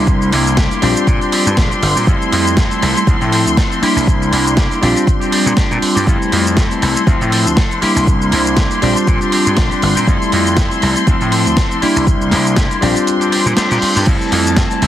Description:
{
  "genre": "filtered disco house",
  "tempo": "120 BPM",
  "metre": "4/4",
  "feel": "swing 55% on 16ths",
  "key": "F major",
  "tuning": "A4 = 440 Hz",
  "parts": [
    { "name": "bell-like tine electric piano", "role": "accompaniment", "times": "0.0-14.9 s", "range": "F3 to F4", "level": "-17 LUFS", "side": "equal", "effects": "phaser, sidechain pumping" },
    { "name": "dark symphonic string section", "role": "sustained chords", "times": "0.0-14.9 s", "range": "A5 to C6", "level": "-21 LUFS", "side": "left 3 dB", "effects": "sidechain pumping" },
    { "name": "electric guitar with an envelope filter", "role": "riff", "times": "0.0-14.9 s", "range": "E3 to A4", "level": "-21 LUFS", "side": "left 1 dB", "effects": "sidechain pumping" },
    { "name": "gritty slap bass", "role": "bass", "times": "0.0-14.9 s", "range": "G1 to Bb2", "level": "-17 LUFS", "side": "equal", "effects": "overdrive, sidechain pumping" },
    { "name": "downlifter and reverse cymbal", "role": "sound effects", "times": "0.2-2.1, 13.4-14.1 s", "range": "none", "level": "-27 LUFS", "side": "equal", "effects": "none" },
    { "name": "dusty soul sampler-style drum kit", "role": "drums", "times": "0.1-14.9 s", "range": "crash cymbal, hi-hat, shaker, snare drum", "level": "-20 LUFS", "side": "right 1 dB", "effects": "overdrive, sidechain pumping on perc, small room ambience, sidechain pumping on hats, sidechain pumping on cymbals" },
    { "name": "electronic kick drum", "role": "drums", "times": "0.1-14.7 s", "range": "none", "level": "-15 LUFS", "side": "equal", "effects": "small room ambience" }
  ],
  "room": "light reverb, digital ambience",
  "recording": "heavily compressed radio sound",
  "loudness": "-11 LUFS",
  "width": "side -11 dB against mid",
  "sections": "0.0-14.9 A section",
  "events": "kick drops out 13.1-14.1; reverse cymbal 13.4-14.1",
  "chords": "0.0 C7; 0.8 Bb69; 2.1 Fmaj7; 3.1 Dm7; 3.8 C7; 4.8 Bb69; 6.1 Fmaj7; 7.1 Dm7; 7.8 C7; 8.8 Bb69; 10.1 Fmaj7; 11.1 Dm7; 11.8 C7; 12.8 Bb69; 14.1 Fmaj7",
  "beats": "| 0.07 0.57 1.07 1.57 | 2.07 2.57 3.07 3.57 | 4.07 4.57 5.07 5.57 | 6.07 6.57 7.07 7.57 | 8.07 8.57 9.07 9.57 | 10.07 10.57 11.07 11.57 | 12.07 12.57 13.07 13.57 | 14.07 14.57"
}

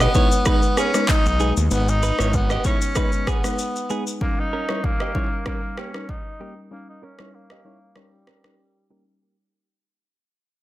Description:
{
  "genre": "afrobeats",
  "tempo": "96 BPM",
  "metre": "4/4",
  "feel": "swing 55% on 16ths",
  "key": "unclear",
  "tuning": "A4 = 439 Hz",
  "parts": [
    { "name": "breathy tenor saxophone", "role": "melody", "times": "0.0-8.9 s", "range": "G3 to D#4", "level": "-26 LUFS", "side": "equal", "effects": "low-pass filter, digital delay" },
    { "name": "direct-recorded clean electric guitar", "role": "riff", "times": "0.0-9.0 s", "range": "A#3 to D#5", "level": "-29 LUFS", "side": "right 5 dB", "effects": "low-pass filter, digital delay" },
    { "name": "fat analog bass", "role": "bass", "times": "0.0-2.6 s", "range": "G#1 to D#2", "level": "-20 LUFS", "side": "equal", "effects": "none" },
    { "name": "afro-pop drum kit", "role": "drums", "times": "0.0-8.6 s", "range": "handclaps, kick drum, rim click, shaker", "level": "-22 LUFS", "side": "equal", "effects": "overdrive" },
    { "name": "soft round pluck", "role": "accompaniment", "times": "0.1-9.2 s", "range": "G3 to B4", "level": "-28 LUFS", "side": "left 2 dB", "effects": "chorus, low-pass filter" }
  ],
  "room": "digital ambience",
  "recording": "dense, heavily limited modern master",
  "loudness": "-19 LUFS",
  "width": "side -15 dB against mid",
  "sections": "0.0-9.2 A section",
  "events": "fade-out 0.0-9.2; filter sweep 0.0-9.2; break 8.0-9.2",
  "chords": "0.0 G#m; 4.2 D#7",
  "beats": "0.46 1.09 | 1.71 2.34 2.96 3.59 | 4.21 4.84 5.46 6.09 | 6.71 7.34 7.96 8.59"
}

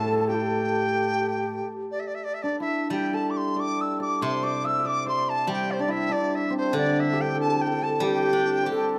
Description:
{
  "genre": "chinese traditional, Chinese chamber ensemble",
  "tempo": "94 BPM",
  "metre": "4/4",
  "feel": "rubato",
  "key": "G zhi mode",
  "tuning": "A4 = 439 Hz",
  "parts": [
    { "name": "dizi", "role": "melody", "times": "0.0-9.0 s", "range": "C5 to E6", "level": "-30 LUFS", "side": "equal", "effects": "none" },
    { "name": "bright xiao", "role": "second line", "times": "0.0-2.3, 8.0-9.0 s", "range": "E4 to A4", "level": "-30 LUFS", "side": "equal", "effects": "none" },
    { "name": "hammered dulcimer", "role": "second line", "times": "0.0-9.0 s", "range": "C4 to E5", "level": "-31 LUFS", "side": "equal", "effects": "none" },
    { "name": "steel-string zither", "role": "accompaniment", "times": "0.0-9.0 s", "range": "A2 to G4", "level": "-32 LUFS", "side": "equal", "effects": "none" }
  ],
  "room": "moderate recital hall reverb, RT60 1.6 s",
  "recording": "none",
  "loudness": "-26 LUFS",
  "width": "mono",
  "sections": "0.0-2.9 A section; 2.9-9.0 B section",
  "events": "none",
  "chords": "none",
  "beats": "| 0.27 0.92 1.57 2.25 | 2.92 3.57 4.22 4.86 | 5.48 6.11 6.74 7.37 | 8.00 8.64"
}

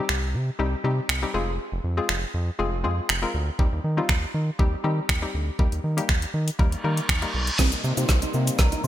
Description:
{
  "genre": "dance-pop",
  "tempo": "120 BPM",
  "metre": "4/4",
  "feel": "straight",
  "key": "C minor",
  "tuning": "A4 = 440 Hz",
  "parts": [
    { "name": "hollow square pluck", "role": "accompaniment", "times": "0.0-8.9 s", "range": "G3 to Bb4", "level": "-30 LUFS", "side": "left 4 dB", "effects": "chorus, sidechain pumping, low-pass filter" },
    { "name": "round analog bass", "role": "bass", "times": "0.1-8.9 s", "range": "F1 to Eb3", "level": "-26 LUFS", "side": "right 1 dB", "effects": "sidechain pumping" },
    { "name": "smooth R&B drum kit", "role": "drums", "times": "0.1-8.9 s", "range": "crash cymbal, finger snaps, hi-hat, kick drum, shaker, snare drum", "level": "-24 LUFS", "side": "equal", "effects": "gated reverb" },
    { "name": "reverse cymbal, riser and downlifter", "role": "sound effects", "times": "6.8-8.9 s", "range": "none", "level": "-30 LUFS", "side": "right 1 dB", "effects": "none" },
    { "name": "warm velvety synth lead", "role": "melody", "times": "7.6-8.9 s", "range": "Bb5 to Eb6", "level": "-37 LUFS", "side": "equal", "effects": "chorus, tremolo, low-pass filter" },
    { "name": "lush unison pad", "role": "sustained chords", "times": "7.6-8.9 s", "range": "C3 to Eb4", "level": "-32 LUFS", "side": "left 1 dB", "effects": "chorus, sidechain pumping, low-pass filter" },
    { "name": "clean electric guitar", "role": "riff", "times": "7.6-8.9 s", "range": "C4 to F4", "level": "-33 LUFS", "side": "right 7 dB", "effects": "ensemble chorus, low-pass filter" }
  ],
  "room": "light reverb",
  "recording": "bright 1980s-style digital production",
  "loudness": "-22 LUFS",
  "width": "side -13 dB against mid",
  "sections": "0.0-7.6 A section; 7.6-8.9 B section",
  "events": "reverse cymbal 6.8-7.6; build-up 7.6-8.9; drum fill 7.6-8.9; riser 7.6-8.9",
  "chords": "0.0 Cm; 1.3 Fm; 3.6 Cm/Eb; 5.6 Eb; 7.6 Cm7",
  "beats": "0.09 0.59 1.09 | 1.59 2.09 2.59 3.09 | 3.59 4.09 4.59 5.09 | 5.59 6.09 6.59 7.09 | 7.59 8.09 8.59"
}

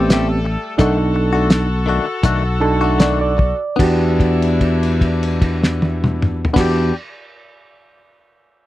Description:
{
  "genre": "straight-eighth soul blues",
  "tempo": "74-89 BPM",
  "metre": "4/4",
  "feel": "swing 54% on 16ths",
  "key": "E minor",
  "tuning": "A4 = 440 Hz",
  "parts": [
    { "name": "overdriven reed electric piano", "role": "accompaniment", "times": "0.0-6.9 s", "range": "B3 to A5", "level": "-20 LUFS", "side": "right 4 dB", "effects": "none" },
    { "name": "bright horn section", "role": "sustained chords", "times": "0.0-6.9 s", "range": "G3 to A4", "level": "-26 LUFS", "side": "left 3 dB", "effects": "none" },
    { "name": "direct-recorded clean electric guitar", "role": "stabs", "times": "0.0-7.0 s", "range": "D#3 to G4", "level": "-22 LUFS", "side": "left 7 dB", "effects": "none" },
    { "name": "fingered electric bass", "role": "bass", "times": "0.0-6.9 s", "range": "A1 to E2", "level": "-18 LUFS", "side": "equal", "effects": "none" },
    { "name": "cloth-damped thuddy drum kit", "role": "drums", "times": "0.1-6.8 s", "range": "crash cymbal, hi-hat, kick drum, snare drum, toms", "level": "-18 LUFS", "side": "equal", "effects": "none" }
  ],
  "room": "little or no reverb",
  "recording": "dry, close 1970s-style studio recording",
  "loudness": "-14 LUFS",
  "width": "side -15 dB against mid",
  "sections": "0.0-3.8 A section; 3.8-7.0 B section",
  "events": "slowing down 0.0-3.8; reed electric piano fill 2.2-3.8; held note 3.8-6.6",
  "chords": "0.0 Am7; 0.8 B7#9; 3.8 Em7",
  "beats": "0.10 | 0.79 1.50 2.23 2.99 | 3.79 4.60 5.41 6.23"
}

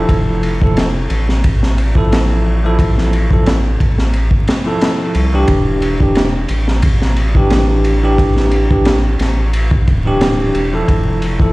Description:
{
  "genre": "trip hop",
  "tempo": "89 BPM",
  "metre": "4/4",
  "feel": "straight",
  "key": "E phrygian",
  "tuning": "A4 = 440 Hz",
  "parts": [
    { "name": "bell-like tine electric piano", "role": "accompaniment", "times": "0.0-11.5 s", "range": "E3 to A4", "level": "-17 LUFS", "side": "equal", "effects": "fast stereo tremolo, tape echo" },
    { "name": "round analog bass", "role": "bass", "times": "0.0-11.5 s", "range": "D1 to C2", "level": "-16 LUFS", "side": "equal", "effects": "none" },
    { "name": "crunchy breakbeat drum kit", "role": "drums", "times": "0.1-11.5 s", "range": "kick drum, ride cymbal, snare drum", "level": "-15 LUFS", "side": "equal", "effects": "vintage 12-bit sampler grit" }
  ],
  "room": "little or no reverb",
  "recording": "played on a big sound system in a bare room, stone room reverb, vinyl crackle",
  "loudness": "-11 LUFS",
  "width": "side -21 dB against mid",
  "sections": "0.0-11.5 A section",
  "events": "none",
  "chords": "0.1 Fmaj7; 5.5 Em7; 10.9 Fmaj7",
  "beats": "| 0.10 0.77 1.44 2.12 | 2.79 3.47 4.14 4.82 | 5.49 6.16 6.84 7.51 | 8.19 8.86 9.53 10.21 | 10.88"
}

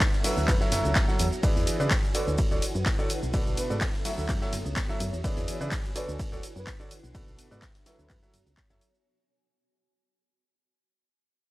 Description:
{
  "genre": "piano house",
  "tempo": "126 BPM",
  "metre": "4/4",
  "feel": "swing 54% on 16ths",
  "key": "F# minor",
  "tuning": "A4 = 445 Hz",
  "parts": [
    { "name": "electronic kick drum", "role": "drums", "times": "0.0-8.7 s", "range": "none", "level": "-28 LUFS", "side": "equal", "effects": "none" },
    { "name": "house drum kit", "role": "drums", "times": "0.0-9.0 s", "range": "cabasa, handclaps, hi-hat, ride cymbal", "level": "-33 LUFS", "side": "equal", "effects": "none" },
    { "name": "vintage brush drum kit", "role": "drums", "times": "0.0-8.9 s", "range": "hi-hat, shaker, snare drum", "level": "-42 LUFS", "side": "left 2 dB", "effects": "none" },
    { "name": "granular cloud pad", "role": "texture", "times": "0.0-9.1 s", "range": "B3 to E5", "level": "-39 LUFS", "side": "equal", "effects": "built-in reverb, sidechain pumping" },
    { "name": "breathy flute-like synth lead", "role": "melody", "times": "0.2-8.2 s", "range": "A4 to E5", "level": "-38 LUFS", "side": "right 1 dB", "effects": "ensemble chorus" },
    { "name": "clear baby grand piano", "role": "riff", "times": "0.2-8.8 s", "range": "B2 to F#5", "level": "-32 LUFS", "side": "right 1 dB", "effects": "sidechain pumping" },
    { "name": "solid FM bass", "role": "bass", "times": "0.4-8.8 s", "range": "D1 to C#3", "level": "-31 LUFS", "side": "equal", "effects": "sidechain pumping" }
  ],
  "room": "small room ambience",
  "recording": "dry, gritty hardware recording",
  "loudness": "-25 LUFS",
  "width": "side -18 dB against mid",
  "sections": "0.0-9.1 A section",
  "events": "drop 0.0-9.1; fade-out 1.4-9.1",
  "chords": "0.5 F#m7; 1.4 E7; 2.1 Dmaj7; 3.3 Bm7; 4.3 F#m7; 5.2 E7; 6.0 Dmaj7; 7.1 Bm7; 8.1 F#m7",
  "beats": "0.00 0.48 0.96 | 1.43 1.91 2.38 2.86 | 3.34 3.81 4.29 4.77 | 5.24 5.72 6.20 6.67 | 7.15 7.62 8.10 8.58"
}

